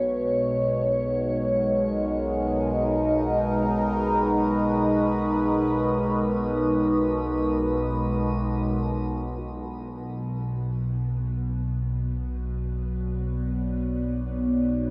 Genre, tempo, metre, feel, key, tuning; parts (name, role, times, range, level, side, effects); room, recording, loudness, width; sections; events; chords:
dark ambient drone; free time; A4 = 439 Hz
sweeping resonant pad; sustained chords; 0.0-14.9 s; G#3 to D5; -28 LUFS; equal; chorus, phaser, shimmer reverb
overtone-sweeping drone; drone; 0.0-14.9 s; B1 to B2; -29 LUFS; equal; chorus, built-in reverb
flickering grainy texture; texture; 10.4-14.9 s; B3; -52 LUFS; equal; built-in reverb, shimmer reverb
wet cathedral reverb, RT60 6.2 s; in a vast, echoing space; -25 LUFS; mono
0.0-9.4 A section; 9.4-14.9 B section
fade-in on analog synth pad 9.4-14.9; fade-in on synth texture 9.4-14.9
0.0 G#madd9; 9.4 Bmadd9